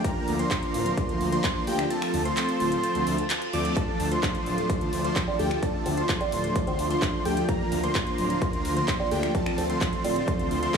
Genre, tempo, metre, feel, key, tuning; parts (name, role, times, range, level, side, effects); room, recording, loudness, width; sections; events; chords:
EDM, festival progressive house; 129 BPM; 4/4; straight; D minor; A4 = 440 Hz
lush unison pad; sustained chords; 0.0-10.8 s; F4 to Bb5; -34 LUFS; equal; chorus, sidechain pumping
wide unison lead; arpeggios; 0.0-10.8 s; G5 to D6; -32 LUFS; right 1 dB; vintage 12-bit sampler grit, sidechain pumping, digital delay
supersaw chords; riff; 0.0-10.8 s; F3 to D5; -29 LUFS; equal; sidechain pumping, digital delay
big-room dance drum kit; drums; 0.0-10.8 s; finger snaps, handclaps, hi-hat; -33 LUFS; equal
electronic kick drum; drums; 0.0-10.8 s; -28 LUFS; equal
wide detuned saw bass; bass; 0.3-10.7 s; D1 to D2; -30 LUFS; equal; chorus, sidechain pumping
reverse cymbal; sound effects; 3.0-3.8 s; -38 LUFS; right 4 dB
buzzing kalimba; melody; 5.3-10.8 s; A4 to D5; -32 LUFS; right 2 dB; digital delay
moderate recital hall reverb, RT60 1.5 s, digital ambience; studio ambience; -23 LUFS; side -6 dB against mid
0.0-10.8 A section
kick drops out 1.9-3.8; reverse cymbal 3.0-3.8
0.0 Bb/D; 1.9 F/D; 3.8 Dm; 7.5 Bb/D; 9.3 F/D